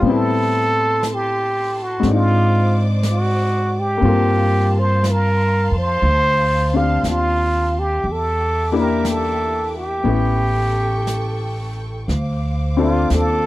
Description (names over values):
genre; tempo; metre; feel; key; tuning
jazz ballad; 60 BPM; 4/4; swing 68% on 8ths; G minor; A4 = 440 Hz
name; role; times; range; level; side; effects
trumpet with plunger mute; melody; 0.0-13.5 s; F4 to F5; -20 LUFS; right 1 dB; none
clear baby grand piano; accompaniment; 0.0-13.5 s; G3 to Bb4; -22 LUFS; left 4 dB; none
warm symphonic string section; sustained chords; 0.0-13.5 s; G4 to D6; -32 LUFS; equal; none
upright bass; bass; 0.0-13.5 s; A1 to A2; -20 LUFS; equal; none
jazz brush drum kit; drums; 0.0-13.5 s; brushed snare drum, hi-hat, snare drum; -33 LUFS; equal; none
room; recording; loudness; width
little or no reverb; dry, close 1970s-style studio recording, faint mains hum; -16 LUFS; side -17 dB against mid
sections
0.0-12.1 A section; 12.1-13.5 B section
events
none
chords
0.0 Am7; 2.0 Ab; 4.0 Gm11; 8.0 Em7b5; 10.0 A7; 12.1 Dm7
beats
| 0.03 1.04 2.04 3.04 | 4.04 5.04 6.04 7.03 | 8.03 9.04 10.04 11.06 | 12.09 13.10